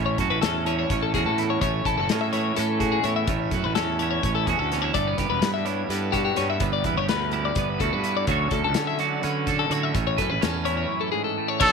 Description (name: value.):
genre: math rock and midwest emo.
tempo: 252 BPM (eighths).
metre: 7/8.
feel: straight.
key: A major.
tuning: A4 = 439 Hz.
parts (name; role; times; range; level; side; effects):
twelve-string electric guitar; accompaniment; 0.0-11.6 s; E2 to B4; -27 LUFS; right 15 dB; none.
twelve-string electric guitar; arpeggios; 0.0-11.7 s; G4 to E5; -26 LUFS; left 10 dB; none.
fuzz fingered electric bass; bass; 0.0-11.7 s; E1 to D3; -27 LUFS; right 1 dB; overdrive.
loose indie drum kit; drums; 0.2-11.7 s; crash cymbal, hi-hat, kick drum, snare drum; -29 LUFS; left 3 dB; none.
clear trumpet; melody; 11.6-11.7 s; A4; -16 LUFS; right 1 dB; none.
crunchy overdriven guitar; riff; 11.6-11.7 s; B2 to F#4; -26 LUFS; right 16 dB; none.
room: moderate plate reverb, RT60 1.5 s.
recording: 1960s-style stereo with parts hard left and right.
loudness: -22 LUFS.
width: side -5 dB against mid.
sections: 0.0-11.6 A section.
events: none.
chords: 0.0 A6; 4.9 G6; 8.3 Dmaj7; 9.9 Amaj7.